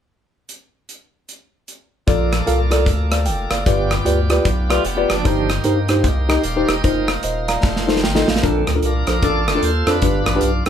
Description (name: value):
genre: uptempo gospel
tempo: 151 BPM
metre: 4/4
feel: swing 62% on 8ths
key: Bb major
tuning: A4 = 440 Hz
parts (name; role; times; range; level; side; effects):
- modern studio drum kit; drums; 0.5-10.7 s; hi-hat, kick drum, rim click, snare drum; -21 LUFS; right 1 dB; none
- mellow tine electric piano; accompaniment; 2.1-10.7 s; G2 to Bb5; -19 LUFS; left 2 dB; medium stereo tremolo
- bright tonewheel organ; sustained chords; 2.1-10.6 s; D3 to G5; -24 LUFS; right 2 dB; fast rotary speaker, overdrive
- saturated sub bass; bass; 2.1-10.7 s; Eb1 to G2; -21 LUFS; equal; none
- clean electric guitar; second line; 4.7-5.5 s; F3 to G4; -25 LUFS; right 7 dB; tremolo
room: light reverb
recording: band playing live in one room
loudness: -15 LUFS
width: side -9 dB against mid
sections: 0.5-2.1 A section; 2.1-8.4 B section; 8.4-10.7 C section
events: tine electric piano fill 7.2-8.4; drum fill 7.6-8.4; tonewheel organ solo 8.4-10.7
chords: 0.5 N.C.; 2.1 Bbmaj7; 3.7 G7; 5.3 Cm7/G; 6.8 F7sus4; 7.6 F7; 8.4 Bbmaj7; 10.0 G7